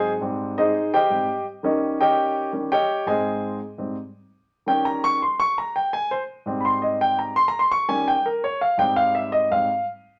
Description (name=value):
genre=jazz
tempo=168 BPM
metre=4/4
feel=straight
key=Ab major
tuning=A4 = 440 Hz
part: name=warm grand piano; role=solo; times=0.0-9.8 s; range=Ab2 to Db6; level=-22 LUFS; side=equal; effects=none
room=moderate club reverb, RT60 0.5 s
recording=none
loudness=-22 LUFS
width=mono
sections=0.2-10.2 A section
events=grand piano solo 0.2-10.2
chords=0.2 Abmaj7; 1.6 Eb7; 3.1 Ab; 4.5 Eb7; 5.9 Abmaj7; 7.4 Eb7; 8.8 Abmaj7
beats=| 0.21 0.57 0.92 1.28 | 1.64 2.00 2.35 2.71 | 3.07 3.43 3.78 4.14 | 4.50 4.86 5.21 5.57 | 5.93 6.29 6.64 7.00 | 7.36 7.72 8.07 8.43 | 8.79 9.15 9.51